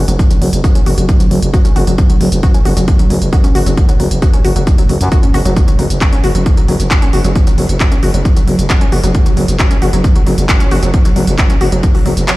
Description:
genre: driving peak-time techno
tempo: 134 BPM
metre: 4/4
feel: straight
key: unclear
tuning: A4 = 441 Hz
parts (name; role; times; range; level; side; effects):
- wide unison pluck; riff; 0.0-12.3 s; F#3 to F#4; -18 LUFS; equal; tube saturation, sidechain pumping, ping-pong delay
- growling FM bass; bass; 0.0-12.3 s; F#1 to F#2; -13 LUFS; equal; tube saturation, sidechain pumping
- techno drum kit; drums; 0.1-12.4 s; handclaps, hi-hat; -21 LUFS; equal; sidechain pumping on hats
- electronic kick drum; drums; 0.2-11.9 s; none; -11 LUFS; equal; none
room: digital ambience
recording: played on a big sound system in a bare room, large studio reverb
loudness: -9 LUFS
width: side -19 dB against mid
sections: 0.0-12.4 A section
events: none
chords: 0.0 F#5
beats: | 0.19 0.64 1.09 1.53 | 1.98 2.43 2.88 3.33 | 3.77 4.22 4.67 5.12 | 5.57 6.01 6.46 6.91 | 7.36 7.80 8.25 8.70 | 9.15 9.60 10.04 10.49 | 10.94 11.39 11.83 12.28

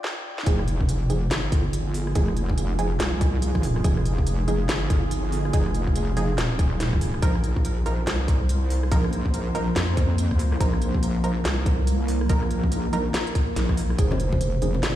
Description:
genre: deep dubstep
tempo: 142 BPM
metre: 4/4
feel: swing 61% on 16ths, half-time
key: F minor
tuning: A4 = 439 Hz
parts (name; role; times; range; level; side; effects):
- deep dark ambient pad; sustained chords; 0.0-15.0 s; Bb3 to G5; -31 LUFS; right 1 dB; chorus, built-in reverb
- garage drum kit; drums; 0.0-14.9 s; hi-hat, rim click, snare drum; -31 LUFS; equal; none
- filtered dub chord stab; stabs; 0.5-14.7 s; F3 to Bb4; -32 LUFS; right 2 dB; chorus, dub echo
- wobble bass; bass; 0.5-15.0 s; Eb1 to F2; -24 LUFS; equal; chorus
- electronic kick drum; drums; 0.5-14.4 s; none; -22 LUFS; equal; none
- mellow hollow low ney; melody; 14.0-15.0 s; C5 to D5; -32 LUFS; right 4 dB; dub echo
- congas; percussion; 14.1-14.8 s; none; -29 LUFS; left 3 dB; none
room: little or no reverb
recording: played on a big sound system in a bare room, stone room reverb, high-pass filter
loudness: -21 LUFS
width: side -13 dB against mid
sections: 0.5-15.0 A section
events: break 0.0-0.5; drum fill 0.0-0.5; drop 0.5-15.0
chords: 0.5 Fm7; 7.2 Bbsus4; 14.0 Fm7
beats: 0.04 | 0.46 0.89 1.31 1.73 | 2.15 2.58 3.00 3.42 | 3.85 4.27 4.69 5.11 | 5.54 5.96 6.38 6.80 | 7.22 7.65 8.07 8.49 | 8.91 9.34 9.76 10.18 | 10.61 11.03 11.45 11.87 | 12.29 12.72 13.14 13.56 | 13.99 14.41 14.83

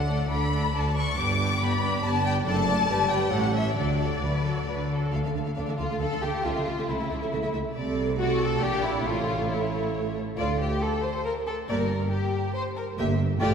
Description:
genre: quick classical-period movement for string orchestra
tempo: 137 BPM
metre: 3/4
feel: rubato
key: D major, D minor from 5.1 s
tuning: A4 = 436 Hz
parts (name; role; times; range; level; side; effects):
- warm studio violin section; melody; 0.0-13.5 s; C#5 to D6; -31 LUFS; left 4 dB; none
- rich studio violin section; second line; 0.0-13.5 s; D4 to D5; -30 LUFS; left 2 dB; none
- rich studio viola section; accompaniment; 0.0-13.5 s; F#3 to A4; -32 LUFS; right 2 dB; none
- rich studio cello section; bass; 0.0-13.5 s; D2 to D3; -31 LUFS; right 1 dB; none
- rich studio double bass section; bass; 0.0-13.5 s; F#1 to D2; -30 LUFS; right 2 dB; none
room: wet church reverb, RT60 3.3 s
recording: recorded in a church or concert hall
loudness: -24 LUFS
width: side -7 dB against mid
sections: 0.0-5.1 A section; 5.1-13.5 B section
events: none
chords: 0.0 D; 1.2 G; 2.5 D/F#; 2.9 G; 3.3 A7; 3.8 D; 5.1 Dm; 6.5 A/C#; 7.7 D5/C; 8.6 Gm/Bb; 9.0 A; 10.4 D5; 11.7 Gm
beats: 0.30 0.73 | 1.17 1.60 2.02 | 2.45 2.88 3.32 | 3.77 4.22 4.68 | 5.13 5.58 6.01 | 6.45 6.89 7.32 | 7.75 8.17 8.61 | 9.05 9.49 9.93 | 10.38 10.82 11.25 | 11.69 12.12 12.55 | 12.98 13.41

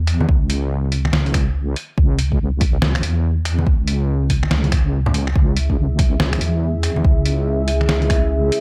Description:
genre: deep dubstep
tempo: 142 BPM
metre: 4/4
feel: swing 62% on 16ths, half-time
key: C# minor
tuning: A4 = 438 Hz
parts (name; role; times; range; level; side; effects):
- deep soft wobble bass; bass; 0.0-8.5 s; C#2 to E2; -21 LUFS; equal; chorus
- trip hop sampler-style drum kit; drums; 0.1-8.6 s; finger snaps, hi-hat, snare drum; -26 LUFS; equal; none
- congas; percussion; 0.2-7.9 s; none; -28 LUFS; equal; dub echo
- electronic kick drum; drums; 0.3-8.2 s; none; -20 LUFS; equal; none
- dark analog pad; sustained chords; 5.4-8.6 s; C#4 to E5; -26 LUFS; equal; chorus
room: little or no reverb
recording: none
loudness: -18 LUFS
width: mono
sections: 0.0-8.6 A section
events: none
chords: 0.0 C#m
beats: | 0.28 0.71 1.13 1.55 | 1.97 2.40 2.82 3.24 | 3.67 4.09 4.51 4.93 | 5.36 5.78 6.20 6.62 | 7.04 7.47 7.89 8.31

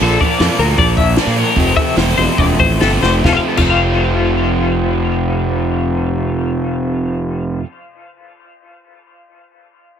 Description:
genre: math rock and midwest emo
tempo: 135-158 BPM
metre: 4/4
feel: straight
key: F major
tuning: A4 = 435 Hz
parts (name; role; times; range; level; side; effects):
- twelve-string electric guitar; arpeggios; 0.0-7.7 s; F4 to F5; -18 LUFS; left 7 dB; tremolo, dub echo
- crunchy overdriven guitar; riff; 0.0-7.7 s; F2 to D4; -18 LUFS; right 2 dB; none
- fuzz fingered electric bass; bass; 0.0-7.6 s; E1 to Bb2; -17 LUFS; equal; overdrive
- compact cocktail drum kit; drums; 0.2-3.7 s; crash cymbal, hi-hat, kick drum, snare drum; -19 LUFS; equal; dub echo
room: small room ambience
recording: echo-heavy mix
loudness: -12 LUFS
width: side -8 dB against mid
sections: 0.0-3.2 A section; 3.2-6.8 B section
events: slowing down 0.0-3.2; drum fill 3.0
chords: 0.0 Bb; 1.6 Fmaj7; 3.2 F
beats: | 0.01 0.40 0.78 1.17 | 1.56 1.97 2.38 2.80 | 3.24 3.69 4.13 4.58 | 5.02 5.46 5.91 6.35

